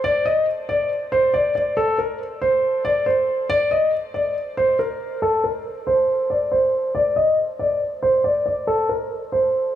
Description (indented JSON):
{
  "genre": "hip hop",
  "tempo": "139 BPM",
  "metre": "4/4",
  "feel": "half-time",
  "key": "unclear",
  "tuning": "A4 = 440 Hz",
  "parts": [
    { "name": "dark grand piano", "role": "solo", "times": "0.0-9.7 s", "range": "A4 to Eb5", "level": "-18 LUFS", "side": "equal", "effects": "low-pass filter" }
  ],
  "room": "light reverb",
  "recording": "studio reverb",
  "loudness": "-18 LUFS",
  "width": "side -11 dB against mid",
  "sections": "0.0-5.2 A section; 5.2-9.8 B section",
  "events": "none",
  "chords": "none",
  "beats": "| 0.04 0.47 0.91 1.34 | 1.77 2.20 2.63 3.06 | 3.50 3.93 4.36 4.79 | 5.22 5.65 6.08 6.52 | 6.95 7.38 7.81 8.24 | 8.67 9.11 9.54"
}